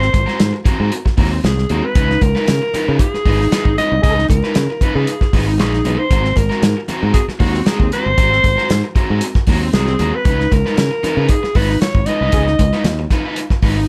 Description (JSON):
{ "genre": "funk", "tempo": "116 BPM", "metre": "4/4", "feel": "straight", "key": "unclear", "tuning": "A4 = 440 Hz", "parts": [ { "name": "breathy alto saxophone", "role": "melody", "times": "0.0-13.1 s", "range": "Gb4 to Eb5", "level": "-22 LUFS", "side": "equal", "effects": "none" }, { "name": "raw garage guitar", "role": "accompaniment", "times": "0.0-13.8 s", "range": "C4 to Cb5", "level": "-24 LUFS", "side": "equal", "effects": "overdrive" }, { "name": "overdriven fingered electric bass", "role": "bass", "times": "0.0-13.8 s", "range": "G1 to Db3", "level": "-20 LUFS", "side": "equal", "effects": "none" }, { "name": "warm soul drum kit", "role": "drums", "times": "0.0-13.8 s", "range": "hi-hat, kick drum, snare drum", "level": "-19 LUFS", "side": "equal", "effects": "none" }, { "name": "congas", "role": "percussion", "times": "0.1-13.8 s", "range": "none", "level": "-29 LUFS", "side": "equal", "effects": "none" }, { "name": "dark trombone", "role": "second line", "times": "4.0-4.1, 12.3-12.4 s", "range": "Ab4", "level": "-26 LUFS", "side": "equal", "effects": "none" } ], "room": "light reverb", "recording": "none", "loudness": "-15 LUFS", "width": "mono", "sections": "0.0-13.9 A section", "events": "band accent 4.0-6.1, 12.3-13.9", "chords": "0.0 Ab9; 2.0 Db9; 6.1 Ab9; 10.3 Db9" }